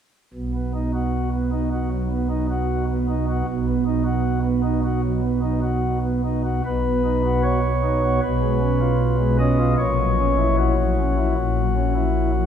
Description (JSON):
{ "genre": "classical, chorale-style piece for pipe organ", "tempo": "76 BPM", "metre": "4/4", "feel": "rubato", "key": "B major", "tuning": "A4 = 440 Hz", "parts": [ { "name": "pipe organ, flutes", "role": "solo", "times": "0.3-12.5 s", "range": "A#1 to D#5", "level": "-19 LUFS", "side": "equal", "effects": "none" } ], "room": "wet cathedral reverb, RT60 4.2 s", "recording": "heard from further back in the room", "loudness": "-19 LUFS", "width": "side -8 dB against mid", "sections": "0.3-6.6 A section; 6.6-12.5 B section", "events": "none", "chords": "0.3 B; 8.2 C#7/B; 9.8 F#7/A#", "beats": "| 0.35 1.14 1.91 2.69 | 3.47 4.24 5.02 5.82 | 6.64 7.44 8.23 9.01 | 9.80 10.60 11.38 12.16" }